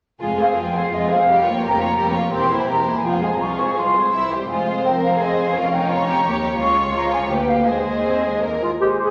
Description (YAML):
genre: quick classical-period movement for symphony orchestra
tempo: 156-176 BPM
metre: 3/4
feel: rubato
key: F minor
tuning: A4 = 440 Hz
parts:
  - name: warm studio violin section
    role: melody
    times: 0.2-8.6 s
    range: Ab4 to E5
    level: -28 LUFS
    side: equal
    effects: none
  - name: flute section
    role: second line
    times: 0.2-9.1 s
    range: Eb5 to Db6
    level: -22 LUFS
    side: equal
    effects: none
  - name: warm studio violin section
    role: second line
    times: 0.2-8.6 s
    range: Eb4 to Bb4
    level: -27 LUFS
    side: equal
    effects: none
  - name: warm studio viola section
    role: accompaniment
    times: 0.2-8.7 s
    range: E3 to Db4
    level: -29 LUFS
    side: equal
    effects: none
  - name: warm chamber cello section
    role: bass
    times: 0.2-8.6 s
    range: C2 to F2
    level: -31 LUFS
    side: equal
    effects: none
  - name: warm studio double bass section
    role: bass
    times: 0.2-8.6 s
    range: E1 to Eb2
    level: -35 LUFS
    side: equal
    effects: none
  - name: mellow clarinet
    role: second line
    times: 8.6-9.1 s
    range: F4 to Ab4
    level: -22 LUFS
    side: equal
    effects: none
  - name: mellow oboe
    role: second line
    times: 8.8-9.1 s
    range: C5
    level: -26 LUFS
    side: equal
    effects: none
  - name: mellow bassoon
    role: accompaniment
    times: 8.8-9.1 s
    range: Ab3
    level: -27 LUFS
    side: equal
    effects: none
room: wet recital hall reverb, RT60 1.7 s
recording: none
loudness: -19 LUFS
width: mono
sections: 0.2-8.8 A section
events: none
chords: 0.2 Fm; 1.3 Gm7b5/F; 2.3 C7/E; 3.0 Fm; 3.4 Fm/C; 4.1 C; 4.5 Fm; 5.6 Gm7b5/F; 6.6 Db; 7.3 G7#9/D; 7.7 Ab/Eb; 8.4 Eb5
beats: | 0.22 0.58 0.93 | 1.28 1.62 1.97 | 2.32 2.68 3.04 | 3.40 3.77 4.13 | 4.50 4.85 5.20 | 5.56 5.90 6.25 | 6.59 6.94 7.30 | 7.68 8.06 8.44 | 8.82